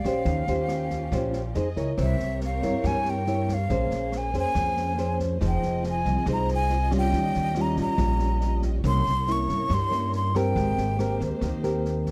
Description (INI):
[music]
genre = bossa nova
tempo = 140 BPM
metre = 4/4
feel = straight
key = unclear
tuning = A4 = 438 Hz
[part]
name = breathy jazz flute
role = melody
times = 0.0-11.2 s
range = E5 to Db6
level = -31 LUFS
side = equal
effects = none
[part]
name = warm symphonic string section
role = sustained chords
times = 0.0-12.1 s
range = Bb3 to Eb5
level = -39 LUFS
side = equal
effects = none
[part]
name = upright bass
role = bass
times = 0.0-12.1 s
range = F1 to G2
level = -30 LUFS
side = equal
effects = none
[part]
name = open jazz drum kit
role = drums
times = 0.0-12.1 s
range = kick drum, rim click, snare drum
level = -37 LUFS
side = equal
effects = none
[part]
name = nylon-string guitar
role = accompaniment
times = 0.1-12.1 s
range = Bb2 to Db5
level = -31 LUFS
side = equal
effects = none
[sound]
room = little or no reverb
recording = dry, close 1970s-style studio recording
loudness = -25 LUFS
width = mono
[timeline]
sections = 0.0-2.0 A section; 2.0-12.1 B section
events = none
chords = 0.3 Eb13; 1.6 Fm7; 2.0 C7b9; 3.7 Bbm9; 5.4 Fm7; 7.1 Eb9; 8.8 C7b9; 10.6 Abmaj9